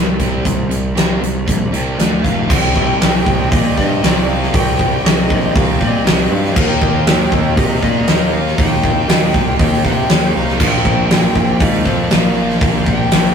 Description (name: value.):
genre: hard rock.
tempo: 119 BPM.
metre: 4/4.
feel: straight.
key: C minor.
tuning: A4 = 439 Hz.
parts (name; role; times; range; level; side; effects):
heavy high-gain guitar; riff; 0.0-13.3 s; F2 to Eb4; -23 LUFS; right 5 dB; distortion.
sludgy distorted guitar; riff; 0.0-13.3 s; F2 to Eb4; -23 LUFS; left 5 dB; overdrive.
fuzz picked electric bass; bass; 0.0-13.3 s; F1 to C3; -18 LUFS; equal; overdrive.
huge arena drum kit; drums; 0.2-13.2 s; crash cymbal, hi-hat, kick drum, snare drum; -15 LUFS; equal; none.
bluesy overdriven lead guitar; melody; 2.2-13.3 s; Eb5 to G5; -21 LUFS; left 3 dB; distortion.
overdriven tonewheel organ; sustained chords; 2.5-13.3 s; Bb3 to F5; -28 LUFS; equal; none.
room: light reverb.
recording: rough rehearsal-room recording.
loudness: -12 LUFS.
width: side -7 dB against mid.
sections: 0.0-2.5 A section; 2.5-13.3 B section.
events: none.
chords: 0.0 C5; 2.0 D5; 2.2 F5; 2.5 Cm; 6.6 Eb; 10.6 Bb5.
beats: | 0.45 0.96 1.48 1.99 | 2.50 3.01 3.52 4.02 | 4.53 5.04 5.55 6.05 | 6.56 7.07 7.57 8.08 | 8.58 9.09 9.59 10.09 | 10.60 11.10 11.61 12.11 | 12.61 13.12.